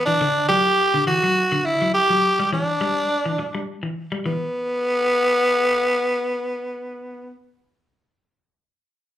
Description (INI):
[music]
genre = afrobeat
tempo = 104 BPM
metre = 4/4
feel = swing 54% on 16ths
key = E minor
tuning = A4 = 440 Hz
[part]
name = raspy tenor saxophone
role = melody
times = 0.0-7.3 s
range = B3 to G4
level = -19 LUFS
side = equal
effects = slapback echo
[part]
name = clean electric guitar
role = arpeggios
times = 0.1-4.4 s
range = D3 to G3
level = -26 LUFS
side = left 2 dB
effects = slapback echo
[sound]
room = moderate club ambience, RT60 0.5 s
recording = live gig heard through the venue's PA, club reverb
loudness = -18 LUFS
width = side -12 dB against mid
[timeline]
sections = 0.0-4.3 A section; 4.3-6.6 B section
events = none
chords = 0.0 Em9; 4.3 N.C.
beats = 0.20 0.78 1.36 | 1.94 2.52 3.10 3.68 | 4.26 4.84 5.42 6.00